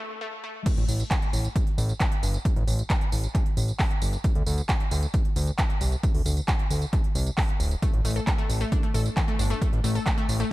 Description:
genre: uplifting trance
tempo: 134 BPM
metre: 4/4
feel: straight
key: unclear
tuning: A4 = 438 Hz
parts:
  - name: wide unison pluck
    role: arpeggios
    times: 0.0-0.5, 7.8-10.4 s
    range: E3 to A4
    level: -32 LUFS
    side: left 3 dB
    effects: sidechain pumping, dub echo
  - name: big-room dance drum kit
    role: drums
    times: 0.7-10.5 s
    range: crash cymbal, handclaps, hi-hat, tambourine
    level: -32 LUFS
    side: right 1 dB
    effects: overdrive
  - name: electronic kick drum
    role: drums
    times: 0.7-10.2 s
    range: none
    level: -25 LUFS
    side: equal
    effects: overdrive, high-pass filter on kick, high-pass filter on room
  - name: fat analog bass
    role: bass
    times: 0.8-10.4 s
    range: D1 to D2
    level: -25 LUFS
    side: equal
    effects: sidechain pumping
room: little or no reverb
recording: dark, warm production, high-pass filter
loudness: -23 LUFS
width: side -18 dB against mid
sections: 0.7-10.5 A section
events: break 0.0-0.7; drop 0.7-10.5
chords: 0.0 N.C.; 0.7 Gsus2; 4.2 Csus2/D; 7.8 A5

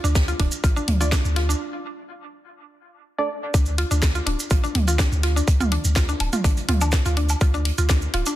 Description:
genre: minimal techno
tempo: 124 BPM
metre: 4/4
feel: straight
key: D minor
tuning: A4 = 440 Hz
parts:
  - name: mallet-like synth pluck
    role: riff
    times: 0.0-8.3 s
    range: D4 to F4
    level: -28 LUFS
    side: equal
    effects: chorus, sidechain pumping, dub echo
  - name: punchy sub bass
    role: bass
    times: 0.0-8.2 s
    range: D1 to D2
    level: -22 LUFS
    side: equal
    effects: sidechain pumping
  - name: maracas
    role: percussion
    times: 0.0-8.4 s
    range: none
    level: -31 LUFS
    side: right 3 dB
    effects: none
  - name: electronic kick drum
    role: drums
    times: 0.2-8.0 s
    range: none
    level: -20 LUFS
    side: equal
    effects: studio reverb
  - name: jazz brush drum kit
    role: drums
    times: 0.2-8.3 s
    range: hi-hat, snare drum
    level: -34 LUFS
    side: right 2 dB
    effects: high-pass filter on hats, studio reverb, soft clipping on snare, high-pass filter on snare, high-pass filter on room
  - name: garage drum kit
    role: drums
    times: 0.4-8.2 s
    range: hi-hat, snare drum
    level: -29 LUFS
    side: left 1 dB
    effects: studio reverb
  - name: electronic toms and woodblock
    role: percussion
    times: 0.9-1.0, 4.8-7.4 s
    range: none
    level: -27 LUFS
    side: right 2 dB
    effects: studio reverb, dub echo
  - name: filtered dub chord stab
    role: stabs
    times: 1.0-3.3 s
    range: A3 to D5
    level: -29 LUFS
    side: right 2 dB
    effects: lush chorus, dub echo
room: studio ambience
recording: dense, heavily limited modern master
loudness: -19 LUFS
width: side -14 dB against mid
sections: 0.0-3.5 A section; 3.5-8.4 B section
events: break 1.6-3.5; drop 3.5-8.4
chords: 0.0 D5

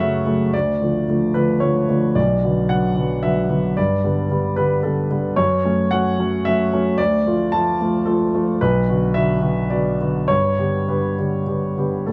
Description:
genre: neoclassical minimalist piano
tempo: 100-115 BPM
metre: 3/4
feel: rubato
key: unclear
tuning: A4 = 440 Hz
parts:
  - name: warm grand piano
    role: solo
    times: 0.0-12.1 s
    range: B1 to A5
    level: -19 LUFS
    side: equal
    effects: none
room: moderate studio reverb, RT60 0.8 s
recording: band playing live in one room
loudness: -19 LUFS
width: mono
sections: 0.0-12.1 A section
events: none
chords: 0.0 F#m; 0.5 Dm; 2.2 Bm; 3.8 G; 5.4 F#m; 7.0 Dm; 8.6 Bm; 10.3 G

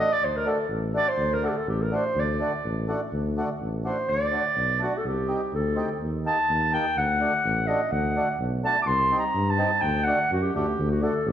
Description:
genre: klezmer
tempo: 125 BPM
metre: 2/4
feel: straight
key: D phrygian dominant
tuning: A4 = 441 Hz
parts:
  - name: mellow clarinet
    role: melody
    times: 0.0-11.3 s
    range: F#4 to D6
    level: -24 LUFS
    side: right 1 dB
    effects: none
  - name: mellow accordion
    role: accompaniment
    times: 0.0-11.1 s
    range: A3 to G4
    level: -31 LUFS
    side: right 1 dB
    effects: none
  - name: dark tuba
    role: bass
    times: 0.2-11.3 s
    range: A1 to G2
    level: -28 LUFS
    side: left 1 dB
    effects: none
room: wet scoring stage reverb, RT60 1.6 s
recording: recorded in a church or concert hall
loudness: -22 LUFS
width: side -10 dB against mid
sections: 0.0-3.1 A section; 3.1-10.8 B section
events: speeding up 0.0-11.3; clarinet solo 3.1-10.8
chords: 0.0 D; 5.1 Cm; 6.0 Eb; 7.0 D; 8.9 Cm; 9.8 D

